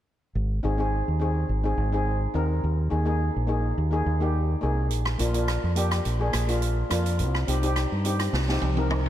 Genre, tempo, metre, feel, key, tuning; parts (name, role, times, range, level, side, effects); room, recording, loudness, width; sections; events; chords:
calypso; 105 BPM; 4/4; swing 53% on 16ths; Ab lydian; A4 = 440 Hz
fingered electric bass; bass; 0.4-9.1 s; Ab1 to G2; -25 LUFS; equal
steel pan; accompaniment; 0.6-9.0 s; Bb3 to Bb4; -28 LUFS; left 1 dB; slapback echo
street-band drum kit; drums; 4.9-9.1 s; hi-hat, rim click, snare drum, toms; -31 LUFS; right 2 dB
light reverb, small room ambience; -23 LUFS; side -12 dB against mid
0.4-9.1 A section
drum fill 8.3-9.1
0.4 Abadd9; 2.6 Ebsus4; 4.9 Bb; 7.2 Cm